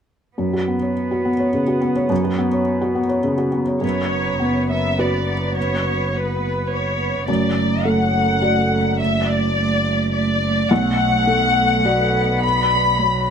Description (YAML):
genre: neoclassical piano and strings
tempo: 105 BPM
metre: 3/4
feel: rubato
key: unclear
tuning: A4 = 440 Hz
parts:
  - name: muted cello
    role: second line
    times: 0.4-13.3 s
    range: F#3 to B3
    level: -25 LUFS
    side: right 6 dB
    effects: none
  - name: felt-muted upright piano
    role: accompaniment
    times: 0.4-13.3 s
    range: B1 to D5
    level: -21 LUFS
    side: equal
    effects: none
  - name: muted chamber violin section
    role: melody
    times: 3.8-13.3 s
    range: B4 to B5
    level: -20 LUFS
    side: left 3 dB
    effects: none
  - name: muted double bass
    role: bass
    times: 3.8-13.3 s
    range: F#1 to B1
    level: -24 LUFS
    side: equal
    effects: none
room: moderate large studio reverb, RT60 1.0 s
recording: none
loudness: -17 LUFS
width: side -7 dB against mid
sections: 0.4-3.8 A section; 3.8-13.3 B section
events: none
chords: 0.4 F#sus4; 7.3 D/F#; 10.7 Bm7